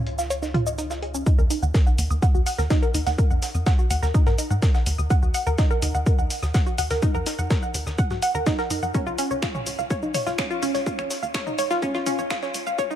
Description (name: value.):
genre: melodic techno.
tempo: 125 BPM.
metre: 4/4.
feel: straight.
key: Eb minor.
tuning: A4 = 440 Hz.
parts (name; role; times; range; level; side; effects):
tight sequencer bass; bass; 0.0-13.0 s; Db2 to Ab2; -26 LUFS; equal; sidechain pumping.
breakbeat sampler-style drum kit; drums; 0.1-12.9 s; hi-hat, snare drum; -38 LUFS; equal; sidechain pumping on hats, high-pass filter on hats, low-pass filter on hats, high-pass filter on snare, low-pass filter on snare.
analog pluck; arpeggios; 0.2-13.0 s; Db4 to Eb6; -26 LUFS; equal; chorus, phaser, vintage 12-bit sampler grit, sidechain pumping, digital delay.
punchy analog drum machine; drums; 0.2-13.0 s; finger snaps, hi-hat, shaker, toms; -30 LUFS; equal; sidechain pumping on perc, sidechain pumping on toms, sidechain pumping on hats.
electronic kick drum; drums; 1.3-12.9 s; none; -21 LUFS; equal; none.
room: light reverb, digital ambience.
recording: dark, warm production, high-pass filter.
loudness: -20 LUFS.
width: side -11 dB against mid.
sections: 0.0-1.3 A section; 1.3-13.0 B section.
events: build-up 1.3-13.0; filter sweep on synth arpeggio sound 1.3-13.0; filter sweep 1.3-13.0.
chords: 0.0 Dbadd9; 1.3 Ebm; 8.9 Db.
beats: 0.30 0.79 | 1.26 1.75 2.23 2.71 | 3.19 3.67 4.14 4.62 | 5.11 5.58 6.07 6.54 | 7.03 7.50 7.99 8.46 | 8.95 9.43 9.90 10.38 | 10.87 11.35 11.82 12.30 | 12.79.